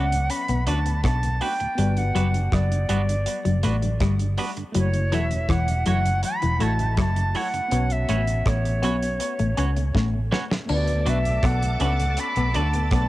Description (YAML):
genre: lovers rock reggae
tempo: 81 BPM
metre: 4/4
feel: straight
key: D major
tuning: A4 = 439 Hz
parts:
  - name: bright reedy silver concert flute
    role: melody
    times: 0.0-13.1 s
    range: C#5 to B5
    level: -27 LUFS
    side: equal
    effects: cassette tape, tape echo
  - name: tine electric piano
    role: accompaniment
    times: 0.0-13.1 s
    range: F#3 to E5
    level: -36 LUFS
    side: left 1 dB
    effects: overdrive, fast stereo tremolo, cassette tape
  - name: semi-hollow electric guitar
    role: riff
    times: 0.0-13.1 s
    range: E3 to D4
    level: -29 LUFS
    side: left 4 dB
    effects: cassette tape, analog delay
  - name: twangy electric guitar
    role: stabs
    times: 0.0-12.7 s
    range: A3 to C#5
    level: -33 LUFS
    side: right 4 dB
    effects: cassette tape, analog delay
  - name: vintage muted fingered electric bass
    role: bass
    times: 0.0-13.1 s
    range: E1 to D2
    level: -23 LUFS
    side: equal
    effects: none
  - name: mellow tonewheel organ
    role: accompaniment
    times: 0.1-12.8 s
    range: D2 to F#4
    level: -36 LUFS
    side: right 3 dB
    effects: overdrive, chorus vibrato, slow rotary speaker, cassette tape
  - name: damped 70s drum kit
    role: drums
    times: 0.1-13.1 s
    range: hi-hat, kick drum, rim click, snare drum, splash cymbal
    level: -28 LUFS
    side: equal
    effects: cassette tape
  - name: string machine, full ensemble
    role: second line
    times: 10.7-13.1 s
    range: A4 to D6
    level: -33 LUFS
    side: right 1 dB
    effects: ensemble chorus, cassette tape, analog delay
room: light reverb, small room ambience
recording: home recording on cassette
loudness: -20 LUFS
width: side -16 dB against mid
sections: 0.0-13.1 A section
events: drum fill 9.9-10.7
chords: 0.0 D6; 1.8 Gmaj7; 4.7 F#m7; 7.7 Bsus2; 10.7 D6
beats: 0.30 1.04 | 1.78 2.52 3.27 4.01 | 4.75 5.49 6.23 6.98 | 7.72 8.46 9.21 9.95 | 10.69 11.43 12.18 12.92